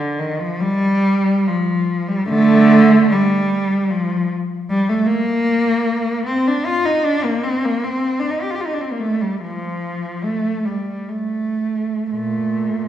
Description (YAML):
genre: classical, free, expressive piece for unaccompanied cello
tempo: 54-79 BPM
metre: 3/4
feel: rubato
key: Bb major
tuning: A4 = 441 Hz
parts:
  - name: warm cello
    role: solo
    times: 0.0-12.9 s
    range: Bb2 to G4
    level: -16 LUFS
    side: right 1 dB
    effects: none
room: wet recital hall reverb, RT60 1.5 s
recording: heard from further back in the room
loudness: -16 LUFS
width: side -11 dB against mid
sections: 0.0-12.9 A section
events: none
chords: none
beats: 0.61 1.47 | 2.30 3.12 3.91 | 4.69 5.47 6.25 | 7.03 7.82 8.61 | 9.42 10.25 11.12 | 12.14